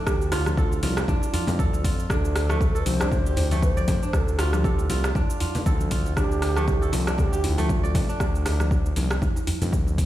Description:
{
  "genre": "afro house",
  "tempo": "118 BPM",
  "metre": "4/4",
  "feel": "swing 56% on 16ths",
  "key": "D minor",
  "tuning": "A4 = 441 Hz",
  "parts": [
    { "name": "mellow hollow bass bansuri", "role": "melody", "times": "0.0-8.2 s", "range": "F4 to C5", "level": "-32 LUFS", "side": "right 2 dB", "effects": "tape echo" },
    { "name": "kora", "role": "arpeggios", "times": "0.0-9.8 s", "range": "A3 to D5", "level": "-31 LUFS", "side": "right 2 dB", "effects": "sidechain pumping, tape echo" },
    { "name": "smooth synth bass", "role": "bass", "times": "0.1-10.1 s", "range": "C2 to F2", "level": "-26 LUFS", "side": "equal", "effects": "sidechain pumping" },
    { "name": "afro-pop drum kit", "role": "drums", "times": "0.1-10.1 s", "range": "hi-hat, rim click, shaker", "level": "-32 LUFS", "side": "right 1 dB", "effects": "none" },
    { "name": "electronic kick drum", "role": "drums", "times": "0.1-10.1 s", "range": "none", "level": "-24 LUFS", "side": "equal", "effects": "none" },
    { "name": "djembe", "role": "percussion", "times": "0.3-9.8 s", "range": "none", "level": "-33 LUFS", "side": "right 1 dB", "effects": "none" },
    { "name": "congas", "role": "percussion", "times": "0.5-10.0 s", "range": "none", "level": "-31 LUFS", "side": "left 2 dB", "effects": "none" }
  ],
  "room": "small room ambience",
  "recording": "played on a big sound system in a bare room, stone room reverb",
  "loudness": "-21 LUFS",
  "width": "side -14 dB against mid",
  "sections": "0.0-10.1 A section",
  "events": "none",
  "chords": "0.0 Dm"
}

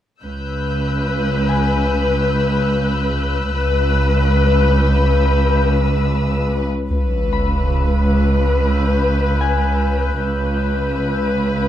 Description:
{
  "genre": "cinematic",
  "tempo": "72 BPM",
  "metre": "4/4",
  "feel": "straight",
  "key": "C# minor",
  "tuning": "A4 = 439 Hz",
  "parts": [
    { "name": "muted studio violin section", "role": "melody", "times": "0.2-11.7 s", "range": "B4", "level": "-21 LUFS", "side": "left 3 dB", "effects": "none" },
    { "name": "muted studio cello section", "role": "bass", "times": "0.2-11.7 s", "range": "C#2", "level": "-21 LUFS", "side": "right 1 dB", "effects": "none" },
    { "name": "muted symphonic double bass section", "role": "bass", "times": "0.2-11.7 s", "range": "C#2", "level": "-19 LUFS", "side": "right 1 dB", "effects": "none" },
    { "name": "muted symphonic violin section", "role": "texture", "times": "0.2-11.7 s", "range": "E6 to G6", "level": "-28 LUFS", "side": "left 5 dB", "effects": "none" },
    { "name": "concert harp", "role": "texture", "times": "1.5-11.7 s", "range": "G#5 to B5", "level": "-26 LUFS", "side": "left 7 dB", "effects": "none" },
    { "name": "sub drop", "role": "sound effects", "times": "6.9-10.2 s", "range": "none", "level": "-22 LUFS", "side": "equal", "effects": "none" }
  ],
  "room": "light reverb",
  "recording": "none",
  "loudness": "-15 LUFS",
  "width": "side -11 dB against mid",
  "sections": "0.2-6.9 A section; 6.9-11.7 B section",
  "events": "impact 6.9-10.2",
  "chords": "0.2 C#m7"
}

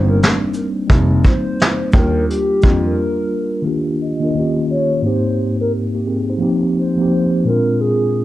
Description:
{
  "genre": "lo-fi hip hop",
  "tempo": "87 BPM",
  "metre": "4/4",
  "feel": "swing 63% on 16ths",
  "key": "Eb major",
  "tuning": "A4 = 439 Hz",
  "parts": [
    { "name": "hollow clarinet-like synth lead", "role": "melody", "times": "0.0-8.2 s", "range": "G4 to Eb5", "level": "-22 LUFS", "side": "equal", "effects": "chorus, low-pass filter, analog delay, plate reverb" },
    { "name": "mellow tine electric piano", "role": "accompaniment", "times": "0.0-8.2 s", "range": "Ab2 to C5", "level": "-17 LUFS", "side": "equal", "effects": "medium stereo tremolo, cassette tape, low-pass filter, plate reverb" },
    { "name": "dark grand piano", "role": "bass", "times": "0.0-2.9 s", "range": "F1 to F2", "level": "-18 LUFS", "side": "equal", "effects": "none" },
    { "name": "vintage brush drum kit", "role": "drums", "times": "0.2-2.8 s", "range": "hi-hat, kick drum, shaker, snare drum", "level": "-14 LUFS", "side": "equal", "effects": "vintage 12-bit sampler grit" }
  ],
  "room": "moderate studio reverb, RT60 0.6 s",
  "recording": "dark, warm production",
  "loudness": "-14 LUFS",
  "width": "side -15 dB against mid",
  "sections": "0.0-3.7 A section; 3.7-8.2 B section",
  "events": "break 3.0-3.7; filter sweep 3.7-8.2",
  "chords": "0.0 Abmaj7 (rootless); 0.9 F7sus4; 1.9 Ebmaj9; 4.3 Eb9; 5.0 Abmaj7; 6.4 F7sus4; 7.4 Bb7"
}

